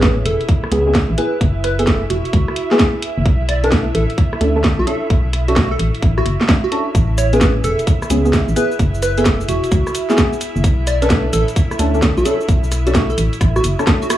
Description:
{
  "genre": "UK garage, two-step garage",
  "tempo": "130 BPM",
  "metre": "4/4",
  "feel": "swing 65% on 16ths",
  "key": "B dorian",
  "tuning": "A4 = 440 Hz",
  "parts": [
    { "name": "plucky unison lead", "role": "melody", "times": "0.0-14.2 s", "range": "F#4 to D5", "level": "-22 LUFS", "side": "right 1 dB", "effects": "tape echo" },
    { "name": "airy breathy pad", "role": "sustained chords", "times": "0.0-14.2 s", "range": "E4 to E5", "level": "-28 LUFS", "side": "right 1 dB", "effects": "chorus, sidechain pumping" },
    { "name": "deep mellow chord stab", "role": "stabs", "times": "0.0-14.0 s", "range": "B3 to A4", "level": "-20 LUFS", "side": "equal", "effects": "chorus, tape echo" },
    { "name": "organ-like FM bass", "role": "bass", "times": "0.0-13.8 s", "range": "E1 to D2", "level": "-18 LUFS", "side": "equal", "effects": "none" },
    { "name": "electronic kick drum", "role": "drums", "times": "0.0-14.0 s", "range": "none", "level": "-16 LUFS", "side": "equal", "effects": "none" },
    { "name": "garage drum kit", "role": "drums", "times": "0.0-14.2 s", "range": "cabasa, hi-hat, rim click, snare drum", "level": "-19 LUFS", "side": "right 1 dB", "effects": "none" }
  ],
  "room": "light reverb, digital ambience",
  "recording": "small room ambience",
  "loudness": "-13 LUFS",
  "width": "side -13 dB against mid",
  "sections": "0.0-14.2 A section",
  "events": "drum fill 13.4-14.2",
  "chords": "0.0 Amaj9; 1.2 F#7sus4; 3.3 Bm9; 6.9 Amaj9; 8.6 F#7sus4; 10.6 Bm9",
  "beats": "0.03 0.49 0.95 | 1.41 1.87 2.33 2.79 | 3.25 3.72 4.18 4.64 | 5.10 5.56 6.03 6.49 | 6.95 7.41 7.87 8.33 | 8.79 9.26 9.72 10.18 | 10.64 11.10 11.56 12.03 | 12.49 12.95 13.41 13.87"
}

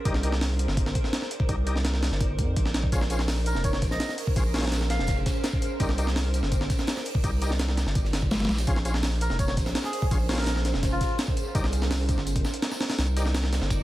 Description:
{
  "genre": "drum and bass, jungle",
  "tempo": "167 BPM",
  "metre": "4/4",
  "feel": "straight",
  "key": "unclear",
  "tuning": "A4 = 441 Hz",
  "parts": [
    { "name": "tonewheel organ", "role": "stabs", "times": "0.1-13.3 s", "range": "Db4 to D5", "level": "-37 LUFS", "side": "left 2 dB", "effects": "chorus vibrato, dub echo" },
    { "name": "saturated sub bass", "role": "bass", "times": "0.1-13.8 s", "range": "F1 to F2", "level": "-27 LUFS", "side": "equal", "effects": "none" },
    { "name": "breakbeat sampler-style drum kit", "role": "drums", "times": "0.1-13.8 s", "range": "hi-hat, kick drum, snare drum", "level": "-27 LUFS", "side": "equal", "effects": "small room ambience" },
    { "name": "huge arena drum kit", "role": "drums", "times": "2.9-13.8 s", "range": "hi-hat, snare drum, tambourine", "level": "-39 LUFS", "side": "right 2 dB", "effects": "high-pass filter on hats, small room ambience, high-pass filter on snare, high-pass filter on perc, high-pass filter on room" },
    { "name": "melodica", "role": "melody", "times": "3.5-5.2, 9.2-11.2 s", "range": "F4 to F5", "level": "-36 LUFS", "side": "equal", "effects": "vintage 12-bit sampler grit, dub echo" }
  ],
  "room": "small room ambience",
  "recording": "dense, heavily limited modern master, vinyl crackle",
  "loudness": "-23 LUFS",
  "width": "side -16 dB against mid",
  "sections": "0.0-13.8 A section",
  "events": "none",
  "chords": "0.1 Cm9; 2.9 Bbm9; 5.8 Cm9; 8.7 Bbm9; 11.5 Cm9",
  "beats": "| 0.05 0.41 0.77 1.13 | 1.49 1.85 2.21 2.57 | 2.93 3.29 3.65 4.00 | 4.36 4.72 5.08 5.44 | 5.80 6.16 6.52 6.88 | 7.24 7.60 7.96 8.31 | 8.68 9.03 9.39 9.75 | 10.11 10.47 10.83 11.19 | 11.55 11.91 12.27 12.63 | 12.99 13.35 13.71"
}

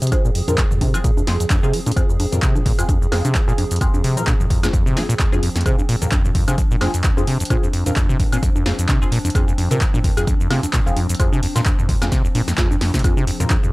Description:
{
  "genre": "acid house",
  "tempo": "130 BPM",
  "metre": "4/4",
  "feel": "swing 56% on 16ths",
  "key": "unclear",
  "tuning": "A4 = 440 Hz",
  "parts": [
    { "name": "warbly tape-like pad", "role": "sustained chords", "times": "0.0-13.7 s", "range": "F3 to Ab4", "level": "-30 LUFS", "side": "equal", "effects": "chorus, built-in reverb, sidechain pumping" },
    { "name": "deep acid bass", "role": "riff", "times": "0.0-13.7 s", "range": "F2 to F3", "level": "-21 LUFS", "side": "equal", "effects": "cassette tape, sidechain pumping" },
    { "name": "punchy analog drum machine", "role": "drums", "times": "0.0-13.7 s", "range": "cabasa, congas, handclaps, hi-hat, snare drum, toms, woodblock", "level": "-24 LUFS", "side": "equal", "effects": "none" },
    { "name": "filtered dub chord stab", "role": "stabs", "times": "0.1-13.5 s", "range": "C4 to Bb4", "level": "-28 LUFS", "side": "left 1 dB", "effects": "phaser, lush chorus, cassette tape, analog delay" },
    { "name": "electronic kick drum", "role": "drums", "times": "0.1-13.6 s", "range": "none", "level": "-18 LUFS", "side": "equal", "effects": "overdrive" }
  ],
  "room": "digital ambience",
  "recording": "dry, gritty hardware recording",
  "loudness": "-16 LUFS",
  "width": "side -21 dB against mid",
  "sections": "0.0-13.7 A section",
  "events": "drum fill 12.1-13.0",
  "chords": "0.0 Fm",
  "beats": "| 0.12 0.58 1.04 1.50 | 1.97 2.43 2.89 3.35 | 3.81 4.27 4.74 5.20 | 5.66 6.12 6.58 7.04 | 7.50 7.97 8.43 8.89 | 9.35 9.81 10.27 10.73 | 11.20 11.66 12.12 12.58 | 13.04 13.50"
}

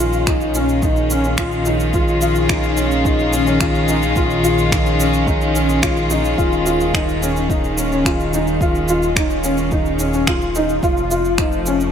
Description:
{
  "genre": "piano and strings electronica",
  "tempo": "108 BPM",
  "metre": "4/4",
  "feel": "straight",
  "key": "Bb minor",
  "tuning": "A4 = 440 Hz",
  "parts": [
    { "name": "warm chamber string section", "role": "sustained chords", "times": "0.0-11.9 s", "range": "Eb3 to F4", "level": "-20 LUFS", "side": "left 1 dB", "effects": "none" },
    { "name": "felt-muted upright piano", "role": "riff", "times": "0.0-11.9 s", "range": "Db4 to F4", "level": "-19 LUFS", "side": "left 2 dB", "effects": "ensemble chorus, analog delay" },
    { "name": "dark detuned saw bass", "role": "bass", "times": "0.0-11.9 s", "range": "Eb1 to Bb1", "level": "-23 LUFS", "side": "equal", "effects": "sidechain pumping" },
    { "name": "electronic shaker and finger snaps", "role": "drums", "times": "0.1-11.9 s", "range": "none", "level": "-25 LUFS", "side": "right 1 dB", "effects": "none" },
    { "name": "electronic kick drum", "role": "drums", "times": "0.3-11.5 s", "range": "none", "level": "-21 LUFS", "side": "equal", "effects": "none" }
  ],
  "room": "moderate plate reverb, RT60 3.1 s",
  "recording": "dreamy mix soaked in reverb",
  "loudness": "-15 LUFS",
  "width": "side -8 dB against mid",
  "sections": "0.0-11.9 A section",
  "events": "none",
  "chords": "0.0 Bbm7; 6.4 Eb9sus4; 10.8 F7",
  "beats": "0.27 0.83 1.39 | 1.94 2.50 3.05 3.61 | 4.16 4.72 5.27 5.83 | 6.38 6.94 7.50 8.05 | 8.61 9.16 9.72 10.27 | 10.83 11.38"
}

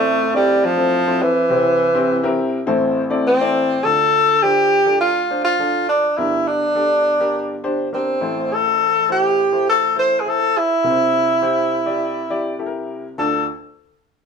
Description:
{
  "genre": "soul",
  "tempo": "103 BPM",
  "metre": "4/4",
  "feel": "straight",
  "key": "D minor",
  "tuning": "A4 = 443 Hz",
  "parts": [
    { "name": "breathy tenor saxophone", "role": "melody", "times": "0.0-13.5 s", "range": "E3 to C5", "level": "-16 LUFS", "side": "equal", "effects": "none" },
    { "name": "warm upright piano", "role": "accompaniment", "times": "0.0-13.5 s", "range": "G1 to D5", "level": "-22 LUFS", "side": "left 2 dB", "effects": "none" }
  ],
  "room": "moderate studio reverb, RT60 0.8 s",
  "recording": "band playing live in one room",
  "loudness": "-15 LUFS",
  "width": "side -6 dB against mid",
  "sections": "0.0-3.8 A section; 3.8-13.2 B section; 13.2-14.3 C section",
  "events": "none",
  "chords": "0.0 Am; 1.5 C; 2.7 Am; 3.8 Dm; 6.2 Gm; 8.2 Am; 10.8 C; 13.2 Dm",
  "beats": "0.34 0.92 | 1.50 2.09 2.67 3.25 | 3.84 4.42 5.00 5.59 | 6.17 6.76 7.34 7.92 | 8.51 9.09 9.67 10.26 | 10.84 11.42 12.01 12.59 | 13.18"
}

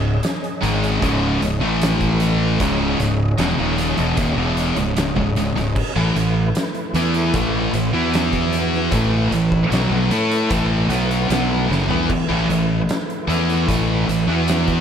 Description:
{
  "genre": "stoner and doom metal",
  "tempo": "76 BPM",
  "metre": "4/4",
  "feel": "straight",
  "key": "unclear",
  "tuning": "A4 = 443 Hz",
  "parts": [
    { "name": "tonewheel organ", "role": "sustained chords", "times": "0.0-14.8 s", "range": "E3 to D#5", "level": "-30 LUFS", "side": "equal", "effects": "slow rotary speaker, overdrive, chorus vibrato" },
    { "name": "high-gain distorted guitar", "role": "riff", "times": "0.0-14.8 s", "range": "C#2 to A4", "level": "-23 LUFS", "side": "left 1 dB", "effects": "distortion" },
    { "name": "thick fuzz guitar", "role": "riff", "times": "0.0-14.8 s", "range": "C#2 to A4", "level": "-23 LUFS", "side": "left 8 dB", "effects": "distortion" },
    { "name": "thick fuzz guitar", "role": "riff", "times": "0.0-14.8 s", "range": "C#2 to A4", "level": "-22 LUFS", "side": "right 7 dB", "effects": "distortion" },
    { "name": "fuzz fingered electric bass", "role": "bass", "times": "0.0-14.8 s", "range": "C#1 to A2", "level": "-24 LUFS", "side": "equal", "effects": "overdrive" },
    { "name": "oversized low-tuned drum kit", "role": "drums", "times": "0.2-14.8 s", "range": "crash cymbal, hi-hat, kick drum, snare drum, toms", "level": "-25 LUFS", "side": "equal", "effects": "none" }
  ],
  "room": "light reverb",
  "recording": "none",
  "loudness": "-16 LUFS",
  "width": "side -8 dB against mid",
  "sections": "0.0-14.8 A section",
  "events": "drum fill 11.7-12.1",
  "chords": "0.0 C#5; 1.6 A5; 2.6 C#m; 6.0 A5; 7.9 E5; 8.9 A5; 14.3 E5",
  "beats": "0.23 1.02 1.81 | 2.60 3.39 4.17 4.96 | 5.75 6.54 7.34 8.13 | 8.92 9.71 10.51 11.30 | 12.10 12.89 13.69 14.48"
}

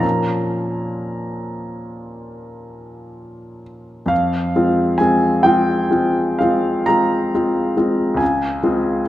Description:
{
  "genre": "classical, romantic nocturne for solo piano",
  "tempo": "40-48 BPM (dotted quarters)",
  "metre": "9/8",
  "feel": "rubato",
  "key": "Bb minor, F minor from 4.1 s",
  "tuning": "A4 = 440 Hz",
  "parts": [
    { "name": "clear grand piano", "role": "solo", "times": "0.0-9.1 s", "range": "Db2 to Bb5", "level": "-16 LUFS", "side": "equal", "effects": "none" }
  ],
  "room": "wet recital hall reverb, RT60 1.8 s",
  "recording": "none",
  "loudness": "-16 LUFS",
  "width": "side -14 dB against mid",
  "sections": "0.0-4.1 A section; 4.1-9.1 B section",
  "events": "none",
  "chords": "0.0 Bbm; 4.1 Fm; 8.2 Dbmaj7",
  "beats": "| 0.03 1.39 2.74 | 4.10 5.45 6.88 | 8.21"
}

